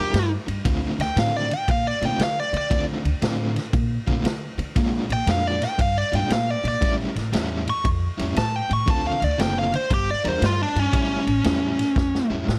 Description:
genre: electric blues shuffle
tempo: 117 BPM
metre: 4/4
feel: swing 66% on 8ths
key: D minor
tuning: A4 = 440 Hz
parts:
  - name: biting lead guitar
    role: melody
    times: 0.0-12.3 s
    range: C#4 to C#6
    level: -27 LUFS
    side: equal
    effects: overdrive
  - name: overdriven semi-hollow guitar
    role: riff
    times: 0.0-12.5 s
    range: A2 to Bb4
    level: -30 LUFS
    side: equal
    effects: tremolo
  - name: upright bass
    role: bass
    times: 0.0-12.6 s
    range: F#1 to D3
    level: -28 LUFS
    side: equal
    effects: none
  - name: vintage drum kit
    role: drums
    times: 0.1-12.6 s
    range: kick drum, ride cymbal, snare drum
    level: -29 LUFS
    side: equal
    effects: none
room: light reverb, small room ambience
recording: none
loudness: -23 LUFS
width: mono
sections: 0.0-12.6 A section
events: lead electric guitar solo 0.0-12.6; drum fill 12.0-12.6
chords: 0.0 Gm7; 0.7 Dm7; 4.8 Bb7; 6.8 A7; 8.9 Dm7; 9.9 Gm7; 10.9 A7

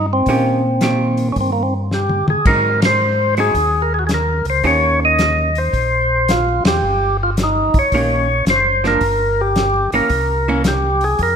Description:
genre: soul jazz organ trio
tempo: 110 BPM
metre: 4/4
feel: swing 67% on 8ths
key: Eb mixolydian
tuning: A4 = 442 Hz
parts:
  - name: percussive tonewheel organ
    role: melody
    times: 0.0-11.4 s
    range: Bb3 to Eb5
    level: -16 LUFS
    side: equal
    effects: slow rotary speaker
  - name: mellow tonewheel organ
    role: bass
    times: 0.0-11.4 s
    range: Gb1 to Bb2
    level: -20 LUFS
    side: equal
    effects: slow rotary speaker
  - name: archtop guitar, miked and amplified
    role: accompaniment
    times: 0.3-10.6 s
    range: Eb3 to G4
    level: -23 LUFS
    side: right 4 dB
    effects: none
  - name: warm soul drum kit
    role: drums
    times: 0.3-11.4 s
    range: crash cymbal, hi-hat, kick drum, ride cymbal, snare drum, toms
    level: -21 LUFS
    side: left 1 dB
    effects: none
room: moderate recital hall reverb, RT60 1.6 s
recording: minimal, uncompressed stereo recording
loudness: -14 LUFS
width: side -7 dB against mid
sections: 0.0-11.4 A section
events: drum fill 1.9-2.5; band accent 2.7, 6.6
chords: 0.0 Eb7; 2.5 Ab7; 4.6 Eb7; 9.0 Gm; 10.1 C7b9

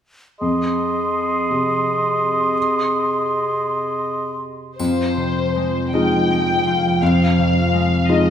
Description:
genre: cinematic, emotional film score for orchestra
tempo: 55 BPM (dotted quarters)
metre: 6/8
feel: rubato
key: F minor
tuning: A4 = 439 Hz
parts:
  - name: clear clarinet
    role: second line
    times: 0.4-4.4 s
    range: Ab4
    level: -25 LUFS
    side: equal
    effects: none
  - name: hollow concert flute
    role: second line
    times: 0.4-4.4 s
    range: C6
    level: -24 LUFS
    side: right 1 dB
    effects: none
  - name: warm oboe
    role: second line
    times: 0.4-4.4 s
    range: Eb5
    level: -23 LUFS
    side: right 2 dB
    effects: none
  - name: felt-muted upright piano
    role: accompaniment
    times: 0.4-8.3 s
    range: F2 to F4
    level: -22 LUFS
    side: equal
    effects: none
  - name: dark studio violin section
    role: melody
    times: 4.8-8.3 s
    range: C5 to G5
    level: -21 LUFS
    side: left 4 dB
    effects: none
  - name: concert harp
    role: arpeggios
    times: 4.8-8.3 s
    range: F2 to Eb5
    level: -24 LUFS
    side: left 5 dB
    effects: none
  - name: dark studio cello section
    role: bass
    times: 4.8-8.3 s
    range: F2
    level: -20 LUFS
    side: right 2 dB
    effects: none
  - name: triangle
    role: percussion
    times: 4.8-6.3 s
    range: none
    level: -40 LUFS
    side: right 2 dB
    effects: none
room: moderate scoring stage reverb, RT60 2.1 s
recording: none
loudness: -17 LUFS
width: side -9 dB against mid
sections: 0.4-4.8 A section; 4.8-8.3 B section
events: none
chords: 0.4 Fm7

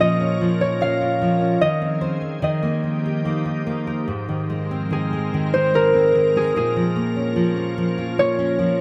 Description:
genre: children's music, lullaby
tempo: 74 BPM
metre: 3/4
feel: rubato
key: Ab major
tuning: A4 = 440 Hz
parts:
  - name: concert harp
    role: melody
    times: 0.0-8.8 s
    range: Ab4 to F5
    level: -23 LUFS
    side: equal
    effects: none
  - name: nylon-string guitar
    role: accompaniment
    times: 0.0-8.8 s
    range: Ab2 to C5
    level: -24 LUFS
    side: equal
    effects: none
  - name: soft additive organ-like pad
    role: sustained chords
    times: 0.0-8.8 s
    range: F3 to Bb4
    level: -31 LUFS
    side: equal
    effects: ensemble chorus, built-in reverb
room: light reverb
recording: none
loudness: -21 LUFS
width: mono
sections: 0.0-8.8 A section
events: none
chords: 0.0 Bbm; 1.6 Ab/Eb; 2.4 Ebadd9; 4.1 Abadd9; 6.6 Bbm

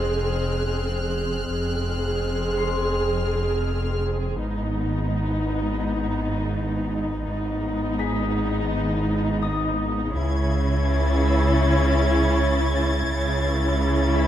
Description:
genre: cinematic, suspense film score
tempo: 83 BPM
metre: 4/4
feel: straight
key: unclear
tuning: A4 = 441 Hz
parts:
  - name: warm chamber viola section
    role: accompaniment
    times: 0.0-14.3 s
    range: Cb4 to Ab4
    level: -25 LUFS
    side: equal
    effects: none
  - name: rich chamber double bass section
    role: bass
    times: 0.0-14.3 s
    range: F1 to Db2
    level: -30 LUFS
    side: right 2 dB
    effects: none
  - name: warm studio cello section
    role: bass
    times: 0.0-14.3 s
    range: F2 to Db3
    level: -28 LUFS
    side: right 1 dB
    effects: none
  - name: warm sub bass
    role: drone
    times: 0.0-14.3 s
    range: F1 to Db2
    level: -27 LUFS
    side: equal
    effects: none
  - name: concert harp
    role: texture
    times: 0.0-14.3 s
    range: Fb4 to C7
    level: -33 LUFS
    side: left 6 dB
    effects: none
  - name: rich studio violin section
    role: texture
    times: 0.0-4.0, 10.2-14.3 s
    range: F6 to A6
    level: -32 LUFS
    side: left 1 dB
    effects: none
room: moderate scoring stage reverb, RT60 1.5 s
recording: none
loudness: -21 LUFS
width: side -11 dB against mid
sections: 0.0-14.3 A section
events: none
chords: 0.0 Fm; 4.4 Abm; 10.2 Dbm

